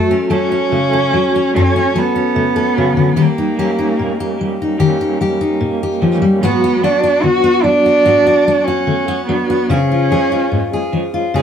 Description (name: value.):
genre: acoustic folk-pop ballad.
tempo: 73 BPM.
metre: 4/4.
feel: straight.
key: unclear.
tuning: A4 = 437 Hz.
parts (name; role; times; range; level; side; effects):
warm cello; melody; 0.0-10.9 s; A3 to F#4; -15 LUFS; right 2 dB; none.
fingerpicked steel-string acoustic guitar; accompaniment; 0.0-11.4 s; F#2 to A4; -16 LUFS; left 3 dB; none.
electric guitar through a small old amp; arpeggios; 0.0-11.4 s; E#3 to D4; -19 LUFS; right 2 dB; tremolo.
room: moderate studio ambience, RT60 0.5 s.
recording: band playing live in one room.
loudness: -12 LUFS.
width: side -8 dB against mid.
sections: 0.0-11.4 A section.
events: none.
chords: 0.0 F#m; 3.2 D#7; 6.4 G#m7b5; 9.7 C#.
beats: 0.70 1.53 2.35 | 3.17 3.98 4.79 5.61 | 6.42 7.24 8.06 8.88 | 9.70 10.53 11.35.